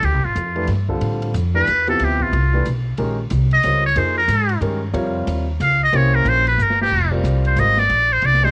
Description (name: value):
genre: modal jazz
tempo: 183 BPM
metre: 3/4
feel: swing 62% on 8ths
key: unclear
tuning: A4 = 440 Hz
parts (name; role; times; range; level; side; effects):
- trumpet with metal mute; melody; 0.0-8.5 s; F4 to F5; -20 LUFS; equal; cassette tape
- upright bass; bass; 0.0-8.5 s; F1 to A2; -22 LUFS; equal; none
- open jazz drum kit; drums; 0.0-8.5 s; crash cymbal, hi-hat, kick drum, ride cymbal, snare drum; -35 LUFS; equal; cassette tape
- warm concert grand piano; accompaniment; 0.6-8.5 s; C3 to Eb5; -27 LUFS; equal; cassette tape
room: small room ambience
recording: home recording on cassette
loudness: -18 LUFS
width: mono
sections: 0.0-6.9 A section; 6.9-8.5 A section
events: muted trumpet solo 0.0-8.5; drum fill 6.6-6.9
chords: 0.0 Dm11; 3.0 Bbm11; 5.9 C7b9; 6.9 F9sus4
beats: | 0.04 0.37 0.69 | 1.02 1.35 1.68 | 2.00 2.33 2.66 | 2.99 3.31 3.64 | 3.97 4.29 4.62 | 4.95 5.28 5.61 | 5.93 6.26 6.59 | 6.92 7.24 7.57 | 7.90 8.23